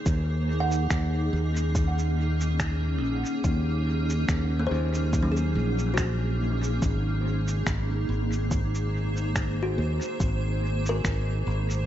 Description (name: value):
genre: ambient dub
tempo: 71 BPM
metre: 4/4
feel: swing 56% on 16ths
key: Eb dorian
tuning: A4 = 439 Hz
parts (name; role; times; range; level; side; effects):
- granular cloud pad; sustained chords; 0.0-11.9 s; Bb3 to C5; -31 LUFS; equal; built-in reverb
- kalimba; arpeggios; 0.0-11.9 s; Gb3 to Gb5; -34 LUFS; left 1 dB; dub echo
- modern bright fingered electric bass; bass; 0.1-11.9 s; Ab1 to Eb2; -26 LUFS; equal; none
- electronic kick drum; drums; 0.1-11.2 s; none; -28 LUFS; equal; overdrive, small room ambience
- electronic shaker and finger snaps; drums; 0.1-11.9 s; none; -35 LUFS; equal; small room ambience, dub echo
room: little or no reverb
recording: vinyl crackle, nothing above 7.8 kHz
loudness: -24 LUFS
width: side -11 dB against mid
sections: 0.0-11.9 A section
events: none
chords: 0.1 Ebm7; 6.8 Ab7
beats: | 0.06 0.91 1.75 2.60 | 3.44 4.29 5.13 5.97 | 6.82 7.67 8.51 9.36 | 10.20 11.04